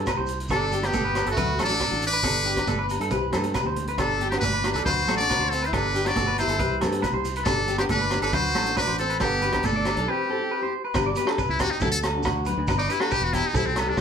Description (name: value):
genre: highlife guitar band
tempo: 138 BPM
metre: 4/4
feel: straight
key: G major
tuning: A4 = 438 Hz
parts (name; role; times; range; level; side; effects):
- nylon-string guitar; accompaniment; 0.0-14.0 s; E3 to G4; -31 LUFS; left 5 dB; none
- clean electric guitar; arpeggios; 0.0-14.0 s; F#4 to D5; -29 LUFS; right 2 dB; none
- fingered electric bass; bass; 0.0-14.0 s; E1 to G2; -30 LUFS; equal; none
- vintage drum kit; drums; 0.1-14.0 s; hi-hat, kick drum, rim click; -31 LUFS; equal; none
- agogo bells; percussion; 0.1-14.0 s; none; -34 LUFS; right 1 dB; none
- congas; percussion; 0.1-9.9 s; none; -35 LUFS; right 3 dB; none
- shekere; percussion; 0.1-14.0 s; none; -35 LUFS; right 3 dB; none
- trumpet with metal mute; melody; 0.5-14.0 s; B3 to D5; -26 LUFS; left 2 dB; none
- raspy tenor saxophone; second line; 0.6-10.7 s; A3 to F#4; -32 LUFS; right 4 dB; none
room: wet small room reverb, RT60 0.5 s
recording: band playing live in one room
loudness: -22 LUFS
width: side -7 dB against mid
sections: 0.0-10.9 A section; 10.9-14.0 B section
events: drum fill 3.4-4.0; break 10.1-10.9; muted trumpet solo 10.9-14.0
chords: 0.0 C; 0.5 G; 1.4 D; 2.2 G; 3.1 C; 4.0 G; 4.9 D; 5.7 G; 6.6 C; 7.5 G; 8.3 D; 9.2 G; 10.1 C; 10.9 G; 11.8 D; 12.7 G